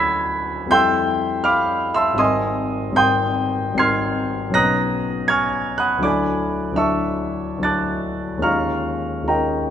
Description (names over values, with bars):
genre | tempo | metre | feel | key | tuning
classical, impressionist solo piano | 67-82 BPM | 5/4 | rubato | unclear | A4 = 440 Hz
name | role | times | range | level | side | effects
warm concert grand piano | solo | 0.0-9.7 s | Ab1 to C7 | -18 LUFS | equal | none
room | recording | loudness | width
moderate concert hall reverb, RT60 2.4 s | none | -18 LUFS | side -9 dB against mid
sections
0.0-9.7 A section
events
none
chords
0.0 Dmaj9; 0.7 Fmaj9; 2.2 Abmaj9; 4.6 Bmaj9; 6.1 Dadd9; 8.5 Eb9sus4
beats
0.73 1.47 | 2.22 2.97 3.79 4.55 5.31 | 6.06 6.81 7.67 8.46 9.30